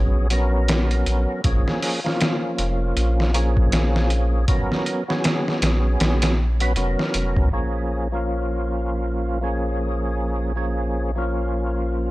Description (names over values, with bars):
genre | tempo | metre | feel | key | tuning
trip hop | 79 BPM | 4/4 | swing 59% on 16ths | Bb phrygian | A4 = 440 Hz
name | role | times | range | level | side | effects
percussive tonewheel organ | accompaniment | 0.0-12.1 s | F3 to Cb5 | -24 LUFS | equal | overdrive, chorus vibrato, slow rotary speaker, harmonic tremolo, vintage 12-bit sampler grit, low-pass filter, tape echo
round analog bass | bass | 0.0-12.1 s | F1 to Db2 | -22 LUFS | equal | transformer saturation
trip hop sampler-style drum kit | drums | 0.3-7.5 s | hi-hat, kick drum, snare drum | -22 LUFS | equal | overdrive, studio reverb
room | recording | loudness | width
digital ambience | dry, gritty hardware recording | -19 LUFS | side -18 dB against mid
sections
0.0-7.5 A section; 7.5-12.1 B section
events
none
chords
0.0 Abm11/Bb; 1.4 Bbm7; 4.5 Abm11; 7.5 Bbm7